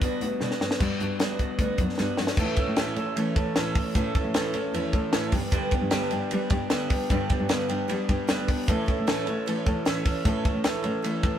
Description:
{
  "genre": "jangly indie pop",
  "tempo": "152 BPM",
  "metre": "4/4",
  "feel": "straight",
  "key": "A mixolydian",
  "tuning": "A4 = 444 Hz",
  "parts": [
    { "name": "picked steel-string acoustic guitar", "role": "accompaniment", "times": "0.0-11.4 s", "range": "G2 to A4", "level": "-29 LUFS", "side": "right 3 dB", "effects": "none" },
    { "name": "electric guitar through a small old amp", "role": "arpeggios", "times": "0.0-11.4 s", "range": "G2 to A4", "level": "-32 LUFS", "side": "left 3 dB", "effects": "none" },
    { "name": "compact cocktail drum kit", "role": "drums", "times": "0.0-11.3 s", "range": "crash cymbal, hi-hat, kick drum, ride cymbal, snare drum", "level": "-27 LUFS", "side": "equal", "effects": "none" },
    { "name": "dark cello", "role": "bass", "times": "0.2-11.3 s", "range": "D2 to A3", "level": "-31 LUFS", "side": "equal", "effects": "none" }
  ],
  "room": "light reverb",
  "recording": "band playing live in one room",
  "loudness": "-23 LUFS",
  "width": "side -10 dB against mid",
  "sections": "0.8-2.4 A section; 2.4-11.4 B section",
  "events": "drum fill 0.4-0.8, 2.0-2.4",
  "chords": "0.0 Gmaj7; 2.4 A; 5.3 G; 8.7 A"
}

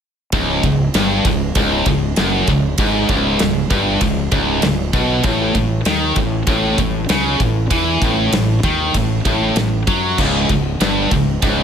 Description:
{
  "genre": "heavy metal",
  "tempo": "97 BPM",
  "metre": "4/4",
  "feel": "straight",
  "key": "C# minor",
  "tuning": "A4 = 439 Hz",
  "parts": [
    { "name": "heavy high-gain guitar", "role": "riff", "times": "0.3-11.6 s", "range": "C#2 to F#3", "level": "-20 LUFS", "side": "left 11 dB", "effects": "distortion" },
    { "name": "heavy high-gain guitar", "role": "riff", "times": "0.3-11.6 s", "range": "C#2 to F#3", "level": "-19 LUFS", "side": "right 9 dB", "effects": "distortion" },
    { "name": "fuzz fingered electric bass", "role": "bass", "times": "0.3-11.6 s", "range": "C#1 to F#2", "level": "-22 LUFS", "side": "equal", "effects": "overdrive" },
    { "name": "big rock drum kit", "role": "drums", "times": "0.3-11.6 s", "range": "crash cymbal, kick drum, ride cymbal, snare drum", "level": "-20 LUFS", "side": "equal", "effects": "none" }
  ],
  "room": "light reverb",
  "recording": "none",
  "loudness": "-14 LUFS",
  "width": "side -8 dB against mid",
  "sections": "0.3-11.6 A section",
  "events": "none",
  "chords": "0.3 C#5; 5.2 A5; 10.2 C#5"
}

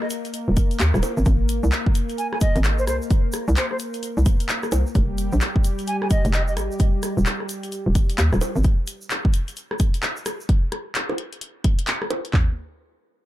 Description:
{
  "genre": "UK garage, two-step garage",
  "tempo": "130 BPM",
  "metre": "4/4",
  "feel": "swing 62% on 16ths",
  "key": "unclear",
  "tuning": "A4 = 439 Hz",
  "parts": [
    { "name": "wooden flute", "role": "melody", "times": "0.0-6.5 s", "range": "C5 to Ab5", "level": "-29 LUFS", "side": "right 1 dB", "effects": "digital delay" },
    { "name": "warm analog pad", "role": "sustained chords", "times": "0.0-8.7 s", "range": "G3 to Bb4", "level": "-30 LUFS", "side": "left 1 dB", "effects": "chorus, sidechain pumping" },
    { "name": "house drum kit", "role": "drums", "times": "0.0-12.3 s", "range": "bongos, handclaps, hi-hat, rim click", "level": "-27 LUFS", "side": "equal", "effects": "none" },
    { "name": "egg shaker", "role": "percussion", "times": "0.1-10.5 s", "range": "none", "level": "-39 LUFS", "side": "right 1 dB", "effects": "none" },
    { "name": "hollow knocking FM bass", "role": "bass", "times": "0.5-8.6 s", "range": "Eb1 to Eb2", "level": "-20 LUFS", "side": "equal", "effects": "none" },
    { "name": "house drum kit", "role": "drums", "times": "0.6-12.5 s", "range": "handclaps, kick drum, toms", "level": "-19 LUFS", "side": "equal", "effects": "none" }
  ],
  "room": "little or no reverb",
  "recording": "dark, warm production",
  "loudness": "-20 LUFS",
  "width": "side -14 dB against mid",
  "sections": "0.0-12.3 A section",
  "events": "drop 0.0-12.3",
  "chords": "0.0 Eb5; 1.0 N.C.; 3.1 Bbsus2/C; 5.0 Fsus2; 6.8 Eb; 8.4 N.C."
}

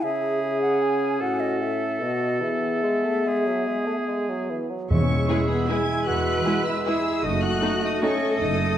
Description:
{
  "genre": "classical, orchestral ballroom waltz",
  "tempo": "135-172 BPM",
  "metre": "3/4",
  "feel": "rubato",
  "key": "E major",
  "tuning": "A4 = 438 Hz",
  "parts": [
    { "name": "bright oboe", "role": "second line", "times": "0.0-8.8 s", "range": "G#4 to E5", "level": "-31 LUFS", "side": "right 2 dB", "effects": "none" },
    { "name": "mellow clarinet", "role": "second line", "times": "0.0-8.8 s", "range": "B3 to G#4", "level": "-30 LUFS", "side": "left 1 dB", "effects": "none" },
    { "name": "mellow hollow silver concert flute", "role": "second line", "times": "0.0-8.7 s", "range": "B4 to G#5", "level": "-30 LUFS", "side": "equal", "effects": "none" },
    { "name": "dark bassoon", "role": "accompaniment", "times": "0.0-8.8 s", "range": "A2 to A3", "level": "-30 LUFS", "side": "right 1 dB", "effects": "none" },
    { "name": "mellow French horn section", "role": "sustained chords", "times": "0.0-8.2 s", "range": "G#3 to A4", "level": "-28 LUFS", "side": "left 1 dB", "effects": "none" },
    { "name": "rich chamber violin section", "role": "melody", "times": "4.9-8.8 s", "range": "B5 to G#6", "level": "-31 LUFS", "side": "left 3 dB", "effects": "none" },
    { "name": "rich symphonic double bass section", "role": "bass", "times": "4.9-8.7 s", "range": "F#1 to E2", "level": "-28 LUFS", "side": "right 3 dB", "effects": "none" },
    { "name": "timpani", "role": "percussion", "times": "4.9-5.5 s", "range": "E2", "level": "-26 LUFS", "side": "left 1 dB", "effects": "none" },
    { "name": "rich chamber violin section", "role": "second line", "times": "5.3-8.1 s", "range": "F#4 to B4", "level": "-35 LUFS", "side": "left 3 dB", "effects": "none" },
    { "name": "rich symphonic viola section", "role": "accompaniment", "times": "5.3-8.1 s", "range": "G#3 to E4", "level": "-30 LUFS", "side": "right 1 dB", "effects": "none" },
    { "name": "rich symphonic cello section", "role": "bass", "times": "5.3-8.8 s", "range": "E4 to B4", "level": "-30 LUFS", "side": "equal", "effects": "none" }
  ],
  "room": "wet scoring stage reverb, RT60 1.5 s",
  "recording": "dark, warm production",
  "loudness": "-21 LUFS",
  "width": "side -10 dB against mid",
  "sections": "0.0-4.9 A section; 4.9-8.8 A section",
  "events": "none",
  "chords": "0.0 C#m; 1.2 F#m/A; 2.0 B7; 2.4 E; 7.2 D#dim/F#"
}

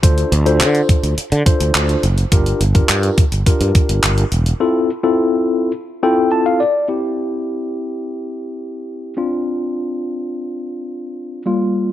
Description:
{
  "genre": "dance-pop",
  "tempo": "105 BPM",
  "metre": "4/4",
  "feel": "straight",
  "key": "D minor",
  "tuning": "A4 = 440 Hz",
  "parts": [
    { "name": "mellow tine electric piano", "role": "accompaniment", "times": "0.0-11.9 s", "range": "G3 to A5", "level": "-18 LUFS", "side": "left 2 dB", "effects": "medium stereo tremolo, sidechain pumping" },
    { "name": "sustaining fretless electric bass", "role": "bass", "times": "0.0-4.5 s", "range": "E1 to D3", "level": "-16 LUFS", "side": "equal", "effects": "sidechain pumping" },
    { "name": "clean 12-bit digital drum machine", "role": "drums", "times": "0.0-4.6 s", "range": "handclaps, hi-hat, kick drum", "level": "-15 LUFS", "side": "equal", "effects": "none" }
  ],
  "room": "light reverb, digital ambience",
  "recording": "none",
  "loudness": "-14 LUFS",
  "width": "side -12 dB against mid",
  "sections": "0.0-6.9 A section; 6.9-11.9 B section",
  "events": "drop 0.0-6.9; silent gap 4.6-6.9; tine electric piano fill 5.7-6.9",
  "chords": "0.0 Dm7; 2.3 Gm7; 4.6 Fmaj7; 6.9 C; 9.2 Dm7"
}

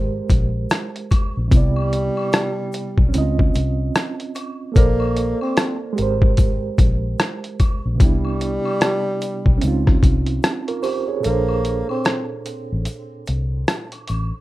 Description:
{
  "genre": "lo-fi hip hop",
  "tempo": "74 BPM",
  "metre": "4/4",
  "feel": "swing 61% on 16ths",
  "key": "Bb major",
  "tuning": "A4 = 441 Hz",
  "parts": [
    { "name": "reed electric piano", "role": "accompaniment", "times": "0.0-14.4 s", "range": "Bb2 to Eb5", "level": "-25 LUFS", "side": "right 5 dB", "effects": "overdrive, fast tremolo, plate reverb" },
    { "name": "vintage muted fingered electric bass", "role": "bass", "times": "0.0-14.3 s", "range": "Ab1 to Db2", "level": "-21 LUFS", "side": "left 1 dB", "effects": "none" },
    { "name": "trip hop sampler-style drum kit", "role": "drums", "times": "0.3-14.3 s", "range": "hi-hat, kick drum, rim click", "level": "-17 LUFS", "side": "left 1 dB", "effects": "none" },
    { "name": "tube shaker and woodblock", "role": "percussion", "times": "0.3-14.3 s", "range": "none", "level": "-36 LUFS", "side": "equal", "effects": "none" },
    { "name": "breathy tenor saxophone", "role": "melody", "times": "1.5-12.3 s", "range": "G3 to C4", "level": "-25 LUFS", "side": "left 1 dB", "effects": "plate reverb" }
  ],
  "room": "light reverb",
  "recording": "rough home demo mix",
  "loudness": "-17 LUFS",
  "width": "side -17 dB against mid",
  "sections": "0.0-11.2 A section; 11.2-14.4 B section",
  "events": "break 11.2-14.4",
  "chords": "0.0 Abmaj9; 1.5 Cmaj9; 3.1 Dbmaj9; 4.8 Bbmaj9; 6.0 Abmaj9; 8.0 Cmaj9; 9.6 Dbmaj9; 11.2 Bbmaj9"
}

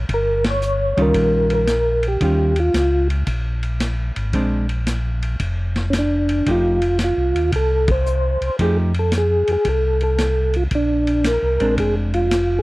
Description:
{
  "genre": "soul jazz organ trio",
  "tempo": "113 BPM",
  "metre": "4/4",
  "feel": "swing 67% on 8ths",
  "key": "unclear",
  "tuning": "A4 = 441 Hz",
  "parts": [
    { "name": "mellow tonewheel organ", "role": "bass", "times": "0.0-12.6 s", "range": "F1 to F2", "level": "-21 LUFS", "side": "equal", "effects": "chorus vibrato, slow rotary speaker" },
    { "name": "percussive tonewheel organ", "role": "melody", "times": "0.1-12.6 s", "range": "Db4 to Db5", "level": "-19 LUFS", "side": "equal", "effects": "slow rotary speaker, chorus vibrato" },
    { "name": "vintage drum kit", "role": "drums", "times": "0.1-12.5 s", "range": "hi-hat, kick drum, ride cymbal, snare drum", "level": "-27 LUFS", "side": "equal", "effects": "none" },
    { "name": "hollow-body jazz guitar", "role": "accompaniment", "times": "1.0-12.3 s", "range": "Eb3 to G4", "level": "-21 LUFS", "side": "right 1 dB", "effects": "none" }
  ],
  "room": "small room ambience",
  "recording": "dry, close 1970s-style studio recording",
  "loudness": "-16 LUFS",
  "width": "side -20 dB against mid",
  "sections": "0.0-12.6 A section",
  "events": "band accent 0.4, 7.8",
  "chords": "0.0 Eb9; 4.3 Bb9; 6.5 F9; 10.7 Bb9"
}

